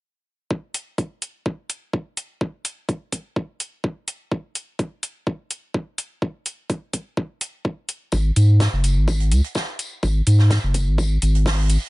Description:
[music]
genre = minimal techno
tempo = 126 BPM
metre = 4/4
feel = straight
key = unclear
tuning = A4 = 441 Hz
[part]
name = electronic kick drum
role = drums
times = 0.5-11.6 s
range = none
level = -24 LUFS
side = equal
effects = overdrive, high-pass filter on kick
[part]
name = electronic hi-hat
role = drums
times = 0.7-11.8 s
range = none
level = -27 LUFS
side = equal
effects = none
[part]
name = saturated sub bass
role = bass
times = 8.1-11.8 s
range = F#1 to G#2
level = -16 LUFS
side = equal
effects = sidechain pumping
[part]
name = loose indie drum kit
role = drums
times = 8.1-11.8 s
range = hi-hat, snare drum, tambourine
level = -30 LUFS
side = right 1 dB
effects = sidechain pumping on hats, high-pass filter on hats, high-pass filter on snare, sidechain pumping on perc, high-pass filter on perc, high-pass filter on room
[sound]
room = little or no reverb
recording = nothing above 10.9 kHz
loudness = -20 LUFS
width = side -22 dB against mid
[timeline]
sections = 0.5-11.9 A section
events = none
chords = none

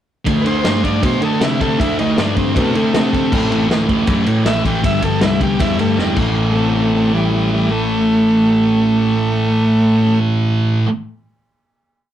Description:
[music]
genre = garage rock duo or trio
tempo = 157 BPM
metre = 4/4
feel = straight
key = A minor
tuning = A4 = 444 Hz
[part]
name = thick fuzz guitar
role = riff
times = 0.2-10.9 s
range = G2 to D4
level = -16 LUFS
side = equal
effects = distortion
[part]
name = picked electric bass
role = bass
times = 0.3-10.8 s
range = G1 to D3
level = -23 LUFS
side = equal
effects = none
[part]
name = vintage drum kit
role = drums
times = 0.3-6.3 s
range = crash cymbal, kick drum, ride cymbal, snare drum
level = -20 LUFS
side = equal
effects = none
[part]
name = combo organ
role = melody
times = 0.4-10.2 s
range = C3 to G5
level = -18 LUFS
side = equal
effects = none
[sound]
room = moderate small room reverb, RT60 0.5 s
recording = rough rehearsal-room recording, warm saturation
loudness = -13 LUFS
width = side -11 dB against mid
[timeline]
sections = 0.3-6.4 pre-chorus; 6.4-9.4 final chord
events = drum fill 6.0-6.4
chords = 0.3 D5; 3.3 Am; 4.8 G5; 6.2 A5

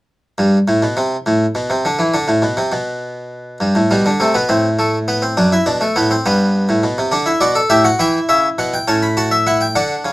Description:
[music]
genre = classical, baroque-style 3-part fugue for harpsichord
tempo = 68 BPM (dotted quarters)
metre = 6/8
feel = straight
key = G major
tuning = A4 = 440 Hz
[part]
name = harpsichord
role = solo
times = 0.4-10.1 s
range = F#2 to B5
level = -13 LUFS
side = equal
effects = none
[sound]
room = little or no reverb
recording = close, detailed microphones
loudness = -13 LUFS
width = side -17 dB against mid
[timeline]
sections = 0.1-3.6 A section; 3.6-10.1 B section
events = none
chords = 0.1 N.C.; 3.6 G; 4.5 Am; 5.4 D7/F#; 6.2 G; 7.1 D; 8.0 Em; 8.9 A7

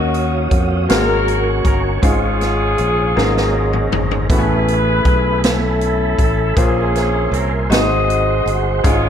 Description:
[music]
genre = slow gospel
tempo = 53 BPM (dotted quarters)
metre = 6/8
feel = straight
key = unclear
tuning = A4 = 440 Hz
[part]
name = dark horn section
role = melody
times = 0.0-9.1 s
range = Bb3 to Eb5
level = -19 LUFS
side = left 1 dB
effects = none
[part]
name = clear baby grand piano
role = accompaniment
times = 0.0-9.1 s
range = Ab2 to G#5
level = -21 LUFS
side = left 2 dB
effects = none
[part]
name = tonewheel organ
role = sustained chords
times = 0.0-9.1 s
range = A3 to Eb6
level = -24 LUFS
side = right 3 dB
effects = slow rotary speaker, overdrive, chorus vibrato
[part]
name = modern bright fingered electric bass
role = bass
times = 0.0-9.1 s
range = G1 to F2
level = -19 LUFS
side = equal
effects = none
[part]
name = swinging big-band drum kit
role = drums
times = 0.1-9.0 s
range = hi-hat, kick drum, snare drum, toms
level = -18 LUFS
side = equal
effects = none
[sound]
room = light reverb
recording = dark, warm production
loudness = -14 LUFS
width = side -8 dB against mid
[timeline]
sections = 0.0-9.1 A section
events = drum fill 3.2-4.3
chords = 0.0 Ebm9; 0.9 Ab9sus4; 2.0 Db/Ab; 3.2 Ab9sus4; 4.3 Amaj9; 6.6 Bbm9; 7.7 Ab7

